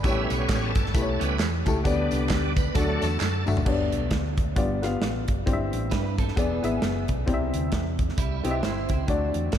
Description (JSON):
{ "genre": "uptempo gospel", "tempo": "133 BPM", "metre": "4/4", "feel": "swing 59% on 8ths", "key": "unclear", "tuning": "A4 = 440 Hz", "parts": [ { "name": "dark baby grand piano", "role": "accompaniment", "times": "0.0-9.6 s", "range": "G2 to B5", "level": "-28 LUFS", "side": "left 3 dB", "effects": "none" }, { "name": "bright tonewheel organ", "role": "sustained chords", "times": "0.0-3.4 s", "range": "F#3 to E5", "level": "-32 LUFS", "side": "right 2 dB", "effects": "overdrive, chorus vibrato, slow rotary speaker" }, { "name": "hollow-body short-scale fingered electric bass", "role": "bass", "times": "0.0-9.6 s", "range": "E1 to G2", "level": "-29 LUFS", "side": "equal", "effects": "none" }, { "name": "modern studio drum kit", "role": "drums", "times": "0.0-9.6 s", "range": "crash cymbal, hi-hat, kick drum, snare drum, toms", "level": "-27 LUFS", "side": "equal", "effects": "none" }, { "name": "tambourine and handclaps", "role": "percussion", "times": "0.0-3.6 s", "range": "none", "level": "-38 LUFS", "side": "right 5 dB", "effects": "none" }, { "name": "clean electric guitar", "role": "second line", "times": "5.9-9.1 s", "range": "G3 to C5", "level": "-34 LUFS", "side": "right 7 dB", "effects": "ensemble chorus, tape echo" } ], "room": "moderate cathedral reverb, RT60 5.0 s", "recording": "dreamy mix soaked in reverb", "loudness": "-23 LUFS", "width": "side -10 dB against mid", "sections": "0.0-3.7 A section; 3.7-9.6 B section", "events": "tonewheel organ solo 0.0-3.7; drum fill 3.2-3.7", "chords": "0.0 A7; 1.8 G; 2.8 D; 3.7 G; 4.6 G7; 5.5 C/G; 6.4 E7; 7.3 C" }